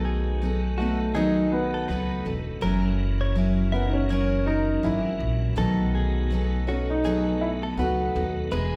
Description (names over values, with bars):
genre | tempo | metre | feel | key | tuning
acoustic pop | 81 BPM | 4/4 | swing 60% on 16ths | unclear | A4 = 440 Hz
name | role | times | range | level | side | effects
picked steel-string acoustic guitar | accompaniment | 0.0-8.8 s | B2 to A#4 | -30 LUFS | equal | none
tonewheel organ | sustained chords | 0.0-8.8 s | B2 to G#4 | -40 LUFS | equal | overdrive, chorus vibrato, slow rotary speaker
direct-recorded clean electric guitar | arpeggios | 0.0-8.7 s | F#4 to E5 | -37 LUFS | equal | none
upright bass | bass | 0.0-8.8 s | E1 to D#2 | -29 LUFS | equal | none
dark upright piano | melody | 0.8-8.3 s | A3 to F#4 | -29 LUFS | equal | none
room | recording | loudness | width
wet recital hall reverb, RT60 1.8 s | recorded in a church or concert hall | -25 LUFS | mono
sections
0.0-8.8 A section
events
none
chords
0.0 B7; 2.6 F#7; 5.6 B7